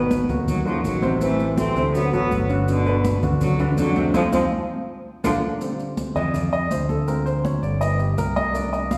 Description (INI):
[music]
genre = Afro-Cuban jazz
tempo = 164 BPM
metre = 4/4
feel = straight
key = unclear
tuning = A4 = 437 Hz
[part]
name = rich cello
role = melody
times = 0.0-5.4 s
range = D3 to C4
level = -29 LUFS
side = equal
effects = none
[part]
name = breathy trombone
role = second line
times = 0.0-5.3 s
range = Cb3 to A3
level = -30 LUFS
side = equal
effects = none
[part]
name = warm upright piano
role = accompaniment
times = 0.0-9.0 s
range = Cb3 to F5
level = -27 LUFS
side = equal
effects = none
[part]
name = modern bright fingered electric bass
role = bass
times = 0.0-9.0 s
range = G1 to F2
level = -27 LUFS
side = equal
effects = none
[part]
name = congas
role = percussion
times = 0.1-9.0 s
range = none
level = -30 LUFS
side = equal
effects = none
[part]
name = maracas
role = percussion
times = 0.1-9.0 s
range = none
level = -47 LUFS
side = equal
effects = none
[sound]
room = wet recital hall reverb, RT60 1.8 s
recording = recorded in a church or concert hall, small room reverb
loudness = -22 LUFS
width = mono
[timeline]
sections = 0.0-5.6 A section; 5.6-9.0 B section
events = band accent 4.1-5.6; upright piano solo 5.6-9.0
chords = 0.0 Abm7; 1.2 Am7; 1.9 D7; 2.7 Gmaj7; 4.1 Fm7; 4.9 Bb; 5.6 F13/D; 7.1 Dm7b5; 7.8 Gaug7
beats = 0.11 0.47 0.84 | 1.21 1.58 1.94 2.31 | 2.68 3.04 3.41 3.78 | 4.14 4.51 4.88 5.24 | 5.61 5.98 6.34 6.71 | 7.08 7.44 7.81 8.18 | 8.54 8.91